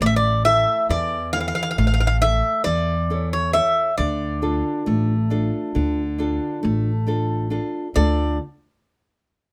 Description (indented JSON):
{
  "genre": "greek folk, Greek bouzouki band",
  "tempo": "136 BPM (eighths)",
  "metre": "9/8",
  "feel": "straight",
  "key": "D harmonic minor",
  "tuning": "A4 = 443 Hz",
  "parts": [
    { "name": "Greek bouzouki", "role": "melody", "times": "0.0-8.4 s", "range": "C#5 to F5", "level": "-23 LUFS", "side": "equal", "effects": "none" },
    { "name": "nylon-string guitar", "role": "accompaniment", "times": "0.0-8.4 s", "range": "D3 to E5", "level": "-27 LUFS", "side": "equal", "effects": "none" },
    { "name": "upright bass", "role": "bass", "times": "0.0-8.4 s", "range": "A1 to E2", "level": "-25 LUFS", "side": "equal", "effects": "none" }
  ],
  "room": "light reverb",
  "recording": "close, detailed microphones",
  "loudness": "-21 LUFS",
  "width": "mono",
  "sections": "0.0-8.0 A section; 8.0-9.5 B section",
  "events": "none",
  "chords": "0.0 A; 4.0 Dm"
}